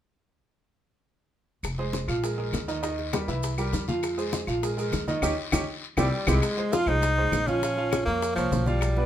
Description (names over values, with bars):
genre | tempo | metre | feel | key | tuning
latin, salsa | 200 BPM | 4/4 | straight | F minor | A4 = 440 Hz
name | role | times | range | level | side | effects
upright bass | bass | 1.6-9.1 s | F1 to F2 | -29 LUFS | equal | none
bongos | percussion | 1.6-9.1 s | none | -34 LUFS | left 6 dB | none
claves | percussion | 1.6-9.0 s | none | -37 LUFS | left 5 dB | none
congas | percussion | 1.6-9.1 s | none | -33 LUFS | left 2 dB | none
guiro | percussion | 1.6-6.3 s | none | -39 LUFS | left 6 dB | none
maracas | percussion | 1.6-9.0 s | none | -40 LUFS | right 5 dB | none
clear grand piano | accompaniment | 1.8-9.1 s | Eb3 to F5 | -29 LUFS | right 2 dB | none
clear tenor saxophone | melody | 6.0-9.1 s | F3 to F4 | -26 LUFS | equal | none
room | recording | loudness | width
moderate studio reverb, RT60 0.8 s | minimal, uncompressed stereo recording | -24 LUFS | side -11 dB against mid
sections
1.6-6.4 A section; 6.4-9.1 B section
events
band accent 5.2-6.4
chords
1.6 Fm; 2.2 Bb7sus4; 2.8 Eb; 3.4 C7; 4.0 Fm; 4.6 Bb7sus4; 5.2 Eb7; 5.8 C; 6.4 Fm; 7.6 Bbm